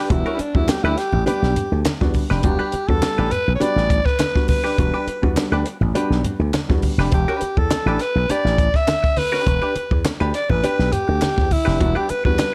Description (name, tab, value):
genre	funk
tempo	103 BPM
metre	4/4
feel	straight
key	E minor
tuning	A4 = 440 Hz
part	raspy alto saxophone	melody	0.0-12.5 s	C#4 to E5	-24 LUFS	equal	none
part	hollow-body jazz guitar	accompaniment	0.0-12.4 s	D4 to B4	-28 LUFS	equal	wah
part	dark upright piano	stabs	0.1-6.9, 11.8-12.5 s	G3 to G4	-29 LUFS	equal	none
part	slap bass with an envelope filter	bass	0.1-12.4 s	E1 to E2	-23 LUFS	equal	none
part	compact cocktail drum kit	drums	0.1-12.5 s	hi-hat, kick drum, snare drum	-24 LUFS	equal	none
part	congas	percussion	0.1-12.5 s	none	-30 LUFS	equal	none
part	group handclap	percussion	0.7-12.5 s	none	-35 LUFS	equal	none
room	light reverb, small room reverb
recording	dark, warm production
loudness	-19 LUFS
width	mono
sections	0.0-12.5 A section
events	alto saxophone solo 0.0-12.5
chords	0.0 Em7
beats	| 0.10 0.69 1.27 1.86 | 2.44 3.03 3.61 4.20 | 4.79 5.37 5.96 6.54 | 7.13 7.71 8.29 8.88 | 9.46 10.05 10.63 11.22 | 11.80 12.39